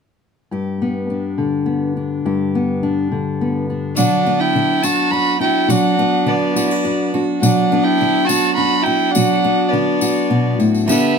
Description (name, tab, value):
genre	acoustic folk duo or small band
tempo	104 BPM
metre	3/4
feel	straight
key	unclear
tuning	A4 = 436 Hz
part	fingerpicked steel-string acoustic guitar	accompaniment	0.5-11.2 s	F#2 to G4	-18 LUFS	left 4 dB	none
part	warm fiddle	melody	4.0-11.2 s	D5 to B5	-18 LUFS	left 1 dB	none
part	clear fiddle	second line	4.0-11.2 s	B3 to F#4	-22 LUFS	right 6 dB	none
part	picked steel-string acoustic guitar	arpeggios	4.0-11.2 s	F#3 to G4	-20 LUFS	right 8 dB	none
part	tambourine	percussion	4.0-11.0 s	none	-26 LUFS	left 5 dB	none
room	light reverb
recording	close, detailed microphones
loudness	-14 LUFS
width	side -6 dB against mid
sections	0.5-4.0 A section; 4.0-11.2 B section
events	none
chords	0.5 G; 4.0 Bm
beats	| 0.52 1.10 1.67 | 2.25 2.82 3.40 | 3.97 4.55 5.12 | 5.70 6.27 6.85 | 7.42 8.00 8.58 | 9.15 9.73 10.31 | 10.88